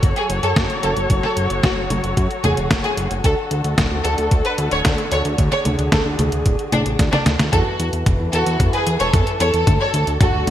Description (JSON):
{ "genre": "italo disco", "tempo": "112 BPM", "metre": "4/4", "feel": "straight", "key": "unclear", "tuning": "A4 = 442 Hz", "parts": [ { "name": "dark studio string section", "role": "sustained chords", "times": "0.0-10.5 s", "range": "D3 to C#5", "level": "-25 LUFS", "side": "left 2 dB", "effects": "low-pass filter" }, { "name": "fat analog bass", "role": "bass", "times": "0.0-10.5 s", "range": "D1 to F#2", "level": "-22 LUFS", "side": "equal", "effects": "none" }, { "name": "detuned 8-bit digital drum machine", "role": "drums", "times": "0.0-10.5 s", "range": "congas, hi-hat, snare drum, toms", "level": "-22 LUFS", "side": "equal", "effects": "gated reverb" }, { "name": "electronic kick drum", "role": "drums", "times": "0.0-10.3 s", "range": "none", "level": "-19 LUFS", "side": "equal", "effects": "none" }, { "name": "warm studio violin section", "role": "melody", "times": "0.2-10.5 s", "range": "D4 to C#5", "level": "-22 LUFS", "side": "equal", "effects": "ping-pong delay" } ], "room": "moderate lush hall reverb, RT60 1.8 s", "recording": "bright 1980s-style digital production, vinyl crackle", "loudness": "-16 LUFS", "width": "side -11 dB against mid", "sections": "0.0-7.5 A section; 7.5-10.5 B section", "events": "drum fill 7.0-7.5, 7.5-10.5; filter sweep on string section 7.5-10.5", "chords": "0.0 F#m; 3.2 D; 7.5 Esus4; 9.7 D", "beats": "0.03 0.56 | 1.10 1.64 2.17 2.71 | 3.24 3.78 4.31 4.85 | 5.38 5.92 6.46 6.99 | 7.53 8.06 8.60 9.13 | 9.67 10.21" }